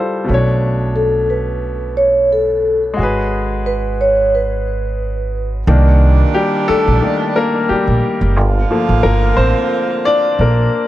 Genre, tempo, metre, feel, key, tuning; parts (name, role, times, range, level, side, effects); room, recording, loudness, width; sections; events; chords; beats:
R&B; 89 BPM; 4/4; swing 56% on 16ths; A4 = 440 Hz
clear baby grand piano; accompaniment; 0.0-10.9 s; B2 to D5; -17 LUFS; left 2 dB
upright bass; bass; 0.3-10.7 s; F#1 to C2; -16 LUFS; right 1 dB
vibraphone with soft mallets; melody; 1.0-5.3 s; A4 to C#5; -16 LUFS; right 1 dB; tape echo
warm saxophone section; stabs; 5.7-10.7 s; Bb2 to F4; -22 LUFS; right 6 dB
light reverb, small room ambience; -12 LUFS; side -14 dB against mid
0.0-5.7 A section; 5.7-10.9 B section
grand piano solo 5.7-10.9
0.3 Bm9; 3.0 Abm7; 5.7 Cm9; 8.4 Gm9
| 0.27 0.94 1.62 2.29 | 2.97 3.64 4.32 4.99 | 5.66 6.34 7.01 7.69 | 8.36 9.04 9.71 10.38